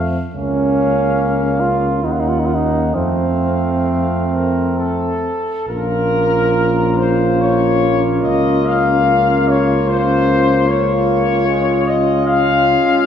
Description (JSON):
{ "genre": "classical, hymn-like piece for brass band", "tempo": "64-76 BPM", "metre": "3/4", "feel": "rubato", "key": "Bb minor", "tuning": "A4 = 440 Hz", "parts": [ { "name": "mellow trumpet section", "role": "melody", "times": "0.0-13.1 s", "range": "A4 to Gb5", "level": "-19 LUFS", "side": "left 5 dB", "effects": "none" }, { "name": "brilliant trombone", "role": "accompaniment", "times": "0.0-13.1 s", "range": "Ab3 to Bb3", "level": "-23 LUFS", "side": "right 1 dB", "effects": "none" }, { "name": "mellow euphonium", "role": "accompaniment", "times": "0.0-13.1 s", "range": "C4 to Db4", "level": "-23 LUFS", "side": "left 5 dB", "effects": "none" }, { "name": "mellow tuba", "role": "bass", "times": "0.0-12.8 s", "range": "Bb1 to F2", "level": "-20 LUFS", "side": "equal", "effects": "none" }, { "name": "mellow flugelhorn", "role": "second line", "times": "0.3-13.1 s", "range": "C4 to F4", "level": "-19 LUFS", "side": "right 4 dB", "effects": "none" } ], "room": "wet scoring stage reverb, RT60 1.7 s", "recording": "heard from further back in the room", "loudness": "-13 LUFS", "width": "side -8 dB against mid", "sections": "0.0-5.7 A section; 5.7-13.1 B section", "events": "none", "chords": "0.4 Bbm/Db; 2.0 Ebm7; 2.9 F; 5.7 Bbm; 8.2 Bbm/Db; 10.7 Db", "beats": "| 0.36 1.19 2.04 | 2.94 3.87 4.78 | 5.69 6.57 7.41 | 8.24 9.08 9.89 | 10.68 11.48 12.28" }